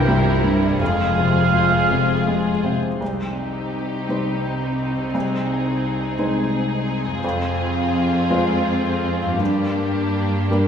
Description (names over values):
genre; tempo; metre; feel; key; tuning
cinematic, emotional film score for orchestra; 56 BPM (dotted quarters); 6/8; uneven beats, rubato; C minor; A4 = 440 Hz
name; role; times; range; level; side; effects
rich symphonic violin section; melody; 0.0-10.7 s; G4 to Bb4; -30 LUFS; left 2 dB; none
rich symphonic violin section; second line; 0.0-10.7 s; D4 to F4; -27 LUFS; left 2 dB; none
warm oboe; second line; 0.0-2.6 s; F5 to G5; -22 LUFS; right 5 dB; none
clear symphonic viola section; accompaniment; 0.0-10.7 s; F3 to C4; -26 LUFS; equal; none
felt-muted upright piano; accompaniment; 0.0-10.7 s; C2 to C5; -23 LUFS; equal; none
concert harp; arpeggios; 0.0-10.7 s; F2 to G5; -27 LUFS; left 5 dB; none
clear symphonic double bass section; bass; 0.0-2.8 s; F1 to C2; -27 LUFS; equal; none
rich symphonic cello section; bass; 0.0-10.7 s; C2 to C3; -26 LUFS; right 1 dB; none
room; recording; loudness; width
wet scoring stage reverb, RT60 1.9 s; heard from further back in the room; -18 LUFS; side -7 dB against mid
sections
0.0-3.0 A section; 3.0-10.7 B section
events
none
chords
0.0 C7; 0.8 Fmadd9; 3.0 Cm; 5.1 Ab/C; 7.2 Fm; 9.4 Gm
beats
| 0.81 1.91 | 3.01 4.09 | 5.15 6.19 | 7.23 8.30 | 9.40 10.51